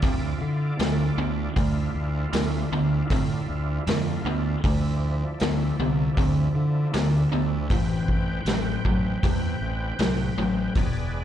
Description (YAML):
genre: blues rock power trio and southern rock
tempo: 78 BPM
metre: 4/4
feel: straight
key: unclear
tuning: A4 = 440 Hz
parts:
  - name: overdriven tonewheel organ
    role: sustained chords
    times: 0.0-11.2 s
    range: F3 to G5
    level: -35 LUFS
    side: right 2 dB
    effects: slow rotary speaker, chorus vibrato
  - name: overdriven semi-hollow guitar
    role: riff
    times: 0.0-11.2 s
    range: E2 to C4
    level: -26 LUFS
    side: equal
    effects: slapback echo
  - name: fuzz fingered electric bass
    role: bass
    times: 0.0-11.2 s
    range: E1 to D3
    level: -27 LUFS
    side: equal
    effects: overdrive
  - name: vintage drum kit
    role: drums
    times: 0.0-10.9 s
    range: hi-hat, kick drum, snare drum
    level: -27 LUFS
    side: equal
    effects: none
room: small room ambience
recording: live gig heard through the venue's PA, club reverb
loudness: -22 LUFS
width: side -10 dB against mid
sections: 0.0-11.2 A section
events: none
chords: 0.0 Dm7; 7.7 Am7